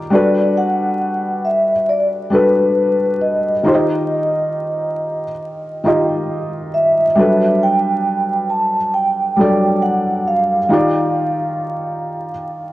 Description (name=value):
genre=hip hop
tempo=68 BPM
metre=4/4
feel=swing 55% on 16ths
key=unclear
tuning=A4 = 440 Hz
part: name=felt-muted upright piano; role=accompaniment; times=0.0-12.7 s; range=Eb3 to Eb5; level=-18 LUFS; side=left 1 dB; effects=cassette tape
part: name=vibraphone with soft mallets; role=melody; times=0.1-12.7 s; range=B4 to A5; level=-17 LUFS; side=right 1 dB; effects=tape echo
room=light reverb, studio ambience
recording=worn, warbling old tape, cassette tape, vinyl crackle, warbly pitch drift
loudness=-14 LUFS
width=side -16 dB against mid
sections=0.0-12.7 A section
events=none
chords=0.1 Gmaj9; 3.6 Ebadd9; 7.2 Gmaj9; 10.7 Ebmaj9